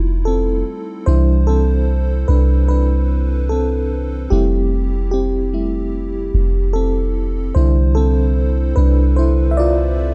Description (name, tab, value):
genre	contemporary R&B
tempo	74 BPM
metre	4/4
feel	swing 58% on 16ths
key	C major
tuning	A4 = 440 Hz
part	FM electric piano with soft pad layer	accompaniment	0.0-10.1 s	D3 to E5	-22 LUFS	equal	chorus, tremolo
part	soft 808-style bass	bass	0.0-10.1 s	F1 to C2	-18 LUFS	equal	none
room	digital ambience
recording	dark, warm production, nothing above 10.9 kHz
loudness	-17 LUFS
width	mono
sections	0.0-10.1 A section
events	FM electric piano solo 0.0-10.1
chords	0.0 Fmaj9; 1.1 Cmaj9; 4.3 Fmaj9; 7.6 Cadd9